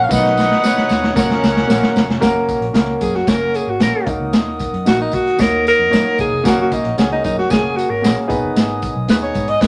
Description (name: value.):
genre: uptempo 1960s-style soul.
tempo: 114 BPM.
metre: 4/4.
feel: straight.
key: F# major.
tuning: A4 = 441 Hz.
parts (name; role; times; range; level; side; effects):
breathy alto saxophone; melody; 0.0-9.7 s; C#4 to E#5; -20 LUFS; equal; none.
warm studio violin section; second line; 0.0-2.2 s; C#4 to F#5; -23 LUFS; equal; none.
glass harmonica; sustained chords; 0.0-9.7 s; F#4 to D#6; -30 LUFS; equal; none.
vintage muted fingered electric bass; bass; 0.0-9.7 s; E#1 to D#3; -28 LUFS; equal; none.
warm grand piano; accompaniment; 0.1-9.7 s; A#3 to C#5; -24 LUFS; equal; none.
crunchy breakbeat drum kit; drums; 0.1-9.7 s; hi-hat, kick drum, snare drum; -20 LUFS; equal; none.
tambourine; percussion; 0.1-9.7 s; none; -36 LUFS; equal; none.
room: wet club reverb, RT60 0.7 s.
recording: none.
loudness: -16 LUFS.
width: mono.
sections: 0.0-2.2 A section; 2.2-9.7 B section.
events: drum fill 0.1-2.2; alto saxophone solo 2.2-9.7.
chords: 0.1 B; 1.2 F#; 4.1 D#m; 6.5 F#; 8.3 G#m.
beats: | 0.10 0.63 1.16 1.69 | 2.22 2.75 3.28 3.81 | 4.34 4.87 5.39 5.92 | 6.45 6.98 7.51 8.04 | 8.56 9.09 9.62.